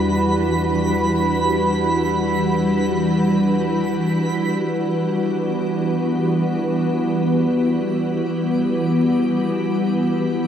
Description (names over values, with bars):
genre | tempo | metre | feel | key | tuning
ambient | free time | none | none | E minor | A4 = 439 Hz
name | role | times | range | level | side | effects
soft additive organ-like pad | sustained chords | 0.0-10.5 s | E3 to B4 | -18 LUFS | equal | ensemble chorus, built-in reverb
warm sub bass | bass | 0.0-4.6 s | E2 | -31 LUFS | equal | none
twinkling granular texture | texture | 0.0-10.5 s | B5 to D6 | -26 LUFS | right 3 dB | built-in reverb
room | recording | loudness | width
wet concert hall reverb, RT60 2.3 s | dark, warm production | -17 LUFS | side -9 dB against mid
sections
0.0-4.6 A section; 4.6-10.5 B section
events
fade-out on sub bass 0.0-4.6; fade-in on synth texture 4.6-10.5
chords
0.0 Em9